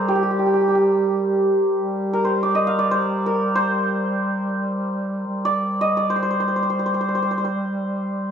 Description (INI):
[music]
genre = Persian modal ensemble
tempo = free time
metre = none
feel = none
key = G dastgah shur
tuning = A4 = 439 Hz
[part]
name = santur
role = melody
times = 0.0-8.3 s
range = G4 to F5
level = -20 LUFS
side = equal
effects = none
[part]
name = mellow duduk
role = drone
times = 0.0-8.3 s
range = G3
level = -25 LUFS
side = right 1 dB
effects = none
[sound]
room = wet recital hall reverb, RT60 1.4 s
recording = dark, warm production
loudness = -19 LUFS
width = side -8 dB against mid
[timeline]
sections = 0.0-1.8 A section; 1.8-8.3 A section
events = none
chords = none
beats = free time